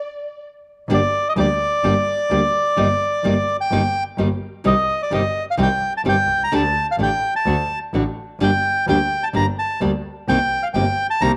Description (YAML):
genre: tango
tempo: 128 BPM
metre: 4/4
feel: rubato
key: G minor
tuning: A4 = 440 Hz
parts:
  - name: bandoneon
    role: melody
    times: 0.9-11.3 s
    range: D5 to Bb5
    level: -22 LUFS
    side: equal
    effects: none
  - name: nylon-string guitar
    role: accompaniment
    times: 0.9-11.3 s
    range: C3 to G4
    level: -24 LUFS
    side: equal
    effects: none
  - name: rich double bass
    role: bass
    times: 0.9-11.4 s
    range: G1 to D2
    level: -27 LUFS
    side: equal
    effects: none
room: moderate spring reverb, RT60 1.9 s, small room reverb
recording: none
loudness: -19 LUFS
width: mono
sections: 0.9-11.4 A section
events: stop 0.0-0.9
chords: 0.0 N.C.; 0.9 Gm; 2.8 Eb/G; 4.6 Cm; 6.5 Dsus4; 7.5 D; 8.4 Gm; 10.3 Cm7